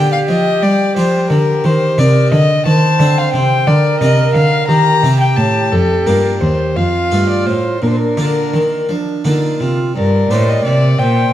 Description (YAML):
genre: classical, baroque-style sonata movement with continuo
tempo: 58 BPM (dotted quarters)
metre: 6/8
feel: straight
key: Bb major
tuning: A4 = 441 Hz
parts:
  - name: dark violin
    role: melody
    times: 0.0-11.3 s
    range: A4 to Bb5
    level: -16 LUFS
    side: left 4 dB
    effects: none
  - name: concert flute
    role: second line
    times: 0.0-11.3 s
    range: D4 to D5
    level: -19 LUFS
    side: right 4 dB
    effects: none
  - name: harpsichord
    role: accompaniment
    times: 0.0-11.3 s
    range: Eb2 to C5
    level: -20 LUFS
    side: equal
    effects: none
  - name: rich cello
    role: bass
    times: 0.0-11.3 s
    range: Eb2 to G3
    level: -14 LUFS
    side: equal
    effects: none
room: moderate recital hall reverb, RT60 1.6 s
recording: vinyl crackle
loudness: -11 LUFS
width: side -12 dB against mid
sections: 0.0-10.0 A section; 10.0-11.3 A section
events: none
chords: 0.0 Gm; 1.6 Eb; 2.7 Cm69; 3.7 Bb; 4.7 Cm7; 5.7 Bb/F; 6.8 F7; 7.8 Bb; 10.0 Gm